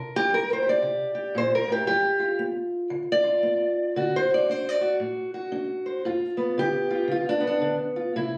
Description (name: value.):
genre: acoustic country blues, solo or duo.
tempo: 115 BPM.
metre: 4/4.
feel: swing 62% on 8ths.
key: G mixolydian.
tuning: A4 = 443 Hz.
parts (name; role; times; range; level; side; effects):
fingerpicked steel-string acoustic guitar; solo; 0.0-8.4 s; G2 to D5; -25 LUFS; equal; slapback echo.
room: moderate small room ambience, RT60 0.5 s.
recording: recorded on a phone in the room, club reverb, compression.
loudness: -25 LUFS.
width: mono.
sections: 0.0-6.1 A section; 6.1-8.4 A section.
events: steel-string acoustic guitar solo 0.0-6.1, 6.1-8.4.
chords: 0.0 C5; 1.9 G7; 4.0 D7; 6.1 G7.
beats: 0.30 0.82 1.35 | 1.87 2.39 2.92 3.44 | 3.96 4.48 5.01 5.53 | 6.05 6.58 7.10 7.62 | 8.14.